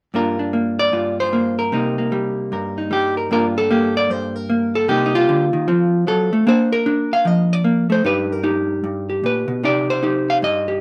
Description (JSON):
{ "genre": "solo jazz", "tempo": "152 BPM", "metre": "4/4", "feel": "swing 64% on 8ths", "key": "G minor", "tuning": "A4 = 437 Hz", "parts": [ { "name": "vintage hollow-body jazz guitar", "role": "solo", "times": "0.1-10.8 s", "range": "G2 to F5", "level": "-19 LUFS", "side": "equal", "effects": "none" } ], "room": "light reverb", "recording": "none", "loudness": "-19 LUFS", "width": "mono", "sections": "0.1-3.3 A section; 3.3-10.8 B section", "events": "none", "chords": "0.1 Gm7; 1.7 Cm7; 3.3 Gm9; 4.9 Cm7; 5.7 F; 6.5 Bb; 8.0 Gaug; 9.6 Cm", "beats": "| 0.13 0.53 0.92 1.32 | 1.72 2.11 2.51 2.90 | 3.30 3.69 4.09 4.48 | 4.88 5.27 5.67 6.07 | 6.46 6.86 7.25 7.65 | 8.04 8.44 8.83 9.23 | 9.62 10.02 10.41" }